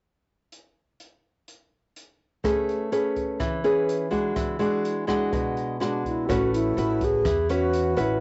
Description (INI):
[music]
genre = bossa nova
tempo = 125 BPM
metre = 4/4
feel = straight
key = A major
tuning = A4 = 440 Hz
[part]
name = open jazz drum kit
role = drums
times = 0.5-8.1 s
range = hi-hat, kick drum, rim click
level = -37 LUFS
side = equal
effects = none
[part]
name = nylon-string guitar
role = accompaniment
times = 2.4-8.2 s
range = B2 to B4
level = -27 LUFS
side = equal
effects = cassette tape
[part]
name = bright reedy wooden-headed alto flute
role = melody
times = 5.8-8.2 s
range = D4 to G#4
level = -27 LUFS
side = equal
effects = cassette tape
[part]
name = warm baby grand piano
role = accompaniment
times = 6.3-8.2 s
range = E4 to C#5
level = -38 LUFS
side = equal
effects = none
[part]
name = upright bass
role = bass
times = 6.3-8.2 s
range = A1 to E2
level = -32 LUFS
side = equal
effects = none
[sound]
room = moderate small room reverb, RT60 0.6 s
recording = home recording on cassette, nothing above 7.9 kHz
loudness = -25 LUFS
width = mono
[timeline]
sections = 0.5-2.4 A section; 2.4-6.3 B section; 6.3-8.2 C section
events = none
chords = 0.5 N.C.; 2.4 Amaj9; 4.4 E9; 6.3 A69